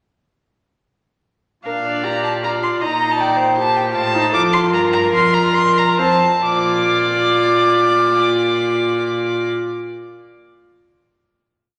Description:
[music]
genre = quick classical-period movement for string quartet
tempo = 130-161 BPM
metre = 3/4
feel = straight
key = Bb major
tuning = A4 = 441 Hz
[part]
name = rich violin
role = melody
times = 1.7-9.5 s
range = F5 to D6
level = -20 LUFS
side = equal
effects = none
[part]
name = rich violin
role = second line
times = 1.7-9.5 s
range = A4 to Eb5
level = -25 LUFS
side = equal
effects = none
[part]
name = warm viola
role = accompaniment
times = 1.7-9.5 s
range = C4 to G4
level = -22 LUFS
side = equal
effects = none
[part]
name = rich cello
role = bass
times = 1.7-9.5 s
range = F2 to Bb2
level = -28 LUFS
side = equal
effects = none
[sound]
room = wet concert hall reverb, RT60 2.0 s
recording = none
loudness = -17 LUFS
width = mono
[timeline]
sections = 1.7-6.4 A section; 6.4-9.2 final chord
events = slowing down 3.4-6.4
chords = 1.7 Bb; 2.8 Cm7/Bb; 3.9 F/A; 4.7 Gm7; 5.1 Bb5/F; 6.0 F; 6.4 Bb

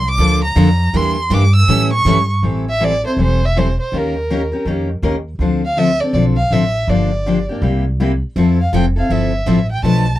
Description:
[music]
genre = acoustic string swing (jazz manouche)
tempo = 162 BPM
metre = 4/4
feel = swing 62% on 8ths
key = A minor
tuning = A4 = 440 Hz
[part]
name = dark violin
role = melody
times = 0.0-10.2 s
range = A#4 to E6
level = -19 LUFS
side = right 1 dB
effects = none
[part]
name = upright bass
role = bass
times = 0.0-10.2 s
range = E1 to A2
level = -17 LUFS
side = equal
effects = none
[part]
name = picked steel-string acoustic guitar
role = accompaniment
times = 0.2-10.1 s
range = B2 to A#4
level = -17 LUFS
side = left 3 dB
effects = none
[part]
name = picked steel-string acoustic guitar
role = accompaniment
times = 0.2-2.2, 8.4-10.1 s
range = B2 to B4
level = -22 LUFS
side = right 8 dB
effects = none
[sound]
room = little or no reverb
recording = dry, close 1970s-style studio recording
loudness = -13 LUFS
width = side -14 dB against mid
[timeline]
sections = 0.0-2.4 A section; 2.4-10.2 B section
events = violin solo 0.0-2.4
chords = 0.0 Bbmaj7; 0.9 Em7b5; 1.7 A7; 2.4 Am7; 3.9 D#9; 5.4 Dm7; 6.9 Gm7; 7.6 C7; 8.4 Fmaj7

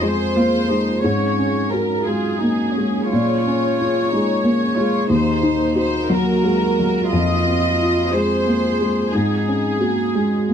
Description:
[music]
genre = neoclassical piano and strings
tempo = 59 BPM (dotted quarters)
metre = 6/8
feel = rubato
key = unclear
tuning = A4 = 440 Hz
[part]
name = clear studio violin section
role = melody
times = 0.0-10.5 s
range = Ab4 to Eb5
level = -22 LUFS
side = left 1 dB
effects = none
[part]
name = warm cello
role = second line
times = 0.0-10.5 s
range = Ab3 to Ab4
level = -25 LUFS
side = right 7 dB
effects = none
[part]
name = felt-muted upright piano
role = accompaniment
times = 0.0-10.5 s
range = Eb2 to Gb4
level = -19 LUFS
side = left 2 dB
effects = none
[part]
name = deep dark ambient pad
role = sustained chords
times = 0.0-10.5 s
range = Gb3 to Ab4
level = -29 LUFS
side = right 3 dB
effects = none
[sound]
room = light reverb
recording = dark, warm production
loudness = -16 LUFS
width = side -8 dB against mid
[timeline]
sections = 0.0-10.5 A section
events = none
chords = 0.0 Fm7; 1.0 Ab7sus4; 3.1 Bbm7; 5.1 Ebm; 7.1 Fm7; 9.1 Ab7sus4

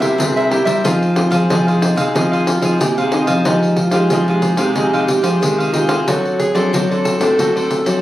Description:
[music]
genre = samba and choro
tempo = 92 BPM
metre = 4/4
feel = straight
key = F minor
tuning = A4 = 440 Hz
[part]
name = breathy alto saxophone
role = melody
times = 0.0-8.0 s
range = Eb4 to A4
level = -21 LUFS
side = right 1 dB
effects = none
[part]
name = cavaquinho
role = accompaniment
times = 0.0-8.0 s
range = Eb4 to F5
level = -20 LUFS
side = right 1 dB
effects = none
[part]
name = nylon-string guitar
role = accompaniment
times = 0.0-8.0 s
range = G2 to A4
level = -20 LUFS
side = left 1 dB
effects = none
[part]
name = nylon-string guitar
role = bass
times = 0.0-8.0 s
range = A2 to G3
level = -19 LUFS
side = equal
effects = none
[part]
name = pandeiro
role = percussion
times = 0.0-8.0 s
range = none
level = -21 LUFS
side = left 1 dB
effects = none
[sound]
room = light reverb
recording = recorded on a phone in the room, studio reverb, compression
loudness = -13 LUFS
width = side -14 dB against mid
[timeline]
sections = 0.0-3.5 A section; 3.5-8.0 B section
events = none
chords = 0.0 C7; 0.8 Fm7; 3.5 Fm9; 6.1 D7

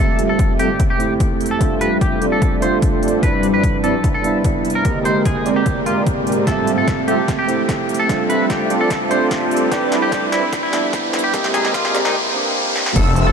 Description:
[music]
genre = future bass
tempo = 148 BPM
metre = 4/4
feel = half-time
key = F lydian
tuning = A4 = 438 Hz
[part]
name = twangy electric guitar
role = melody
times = 0.0-13.3 s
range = Eb4 to C5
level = -22 LUFS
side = left 1 dB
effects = analog chorus, sidechain pumping, ping-pong delay
[part]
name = tine electric piano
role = accompaniment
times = 0.0-13.0 s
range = D3 to E5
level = -22 LUFS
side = right 3 dB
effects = sidechain pumping
[part]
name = shimmering ambient pad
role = sustained chords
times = 0.1-12.1 s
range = F2 to B4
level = -27 LUFS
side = equal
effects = chorus, built-in reverb, phaser, sidechain pumping
[part]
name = big bright polysynth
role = riff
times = 0.0-13.3 s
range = G3 to E5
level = -21 LUFS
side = right 1 dB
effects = sidechain pumping
[part]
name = riser and impact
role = sound effects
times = 3.4-13.3 s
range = none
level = -28 LUFS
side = equal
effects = none
[part]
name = big-room dance drum kit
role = drums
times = 0.2-13.2 s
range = crash cymbal, hi-hat, snare drum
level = -28 LUFS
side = equal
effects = overdrive, high-pass filter on hats, high-pass filter on snare, high-pass filter on cymbals, high-pass filter on room
[part]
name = electronic kick drum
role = drums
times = 0.4-13.0 s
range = none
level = -20 LUFS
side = equal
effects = overdrive
[part]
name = airy dreamy lead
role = arpeggios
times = 13.0-13.3 s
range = E6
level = -23 LUFS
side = equal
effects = chorus, sidechain pumping
[part]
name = wide detuned saw bass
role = bass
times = 13.0-13.3 s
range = F1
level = -14 LUFS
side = left 1 dB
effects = chorus, sidechain pumping
[sound]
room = moderate huge ambient reverb, RT60 6.3 s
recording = dark, warm production, high-pass filter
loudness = -15 LUFS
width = side -6 dB against mid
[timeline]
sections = 0.0-13.0 A section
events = build-up 0.0-13.0; filter sweep on analog polysynth 0.0-13.0; filter sweep 0.0-13.0; riser 3.4-13.0; drum fill 6.5-12.1, 12.8; impact 13.0-13.3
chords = 0.0 Fmaj9; 1.6 G9sus4; 3.2 Cmaj9; 4.9 Abmaj9#11; 6.5 Fmaj9; 8.1 G9sus4; 9.7 Cmaj9; 11.3 Abmaj9#11

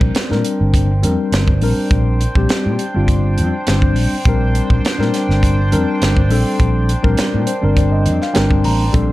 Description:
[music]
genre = electric jazz fusion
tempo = 102 BPM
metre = 4/4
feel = straight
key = Bb major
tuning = A4 = 440 Hz
[part]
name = mellow tine electric piano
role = accompaniment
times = 0.0-9.1 s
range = G3 to Bb5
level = -19 LUFS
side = left 2 dB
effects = medium stereo tremolo, plate reverb
[part]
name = chorused pulse-width pad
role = sustained chords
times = 0.0-9.1 s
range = D4 to G5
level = -24 LUFS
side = right 2 dB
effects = plate reverb
[part]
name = fingered electric bass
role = bass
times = 0.0-9.1 s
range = G1 to Bb2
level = -16 LUFS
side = equal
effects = none
[part]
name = crisp fusion drum kit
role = drums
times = 0.0-9.1 s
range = hi-hat, kick drum, snare drum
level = -18 LUFS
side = equal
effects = none
[sound]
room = light reverb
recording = dark, warm production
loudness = -13 LUFS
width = side -17 dB against mid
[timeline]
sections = 0.0-9.1 A section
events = tine electric piano fill 7.2-8.9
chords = 0.0 Bb69

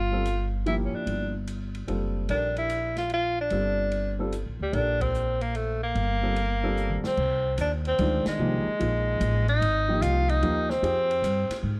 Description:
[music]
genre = modal jazz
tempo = 148 BPM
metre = 3/4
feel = swing 67% on 8ths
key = G dorian, F dorian from 7.2 s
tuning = A4 = 440 Hz
[part]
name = bright tenor saxophone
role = melody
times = 0.0-11.6 s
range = G3 to F4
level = -29 LUFS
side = equal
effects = none
[part]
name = upright bass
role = bass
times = 0.0-11.8 s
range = F#1 to Ab2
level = -31 LUFS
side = equal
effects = none
[part]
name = warm baby grand piano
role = accompaniment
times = 0.1-11.8 s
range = Eb3 to Bb4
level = -34 LUFS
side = equal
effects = none
[part]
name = open jazz drum kit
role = drums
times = 0.3-11.6 s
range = crash cymbal, hi-hat, kick drum, ride cymbal, snare drum, toms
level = -43 LUFS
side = equal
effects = none
[sound]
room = light reverb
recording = dark, warm production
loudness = -27 LUFS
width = mono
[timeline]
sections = 0.0-7.2 A section; 7.2-11.8 B section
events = band accent 4.9, 8.2; drum fill 6.8-7.2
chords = 0.0 Gm9; 7.2 Fm9

